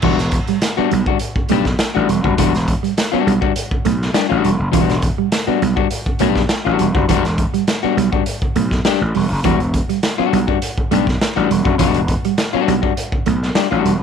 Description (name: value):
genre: funk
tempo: 102 BPM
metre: 4/4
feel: straight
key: E minor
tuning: A4 = 441 Hz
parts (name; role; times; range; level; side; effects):
- electric guitar at the edge of break-up; accompaniment; 0.0-13.9 s; G3 to G4; -20 LUFS; left 14 dB; none
- mellow electric guitar; riff; 0.0-13.9 s; E3 to B3; -21 LUFS; right 14 dB; wide subtle chorus
- gritty slap bass; bass; 0.0-14.0 s; E1 to B1; -19 LUFS; equal; overdrive
- raw garage drum kit; drums; 0.0-14.0 s; crash cymbal, hi-hat, kick drum, snare drum; -20 LUFS; equal; none
room: light reverb, small room reverb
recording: 1960s-style stereo with parts hard left and right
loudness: -14 LUFS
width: side -7 dB against mid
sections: 0.0-14.0 A section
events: none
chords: 0.0 Em9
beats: | 0.03 0.62 1.21 1.80 | 2.38 2.97 3.56 4.15 | 4.74 5.33 5.91 6.50 | 7.09 7.68 8.27 8.85 | 9.44 10.03 10.62 11.20 | 11.79 12.38 12.96 13.55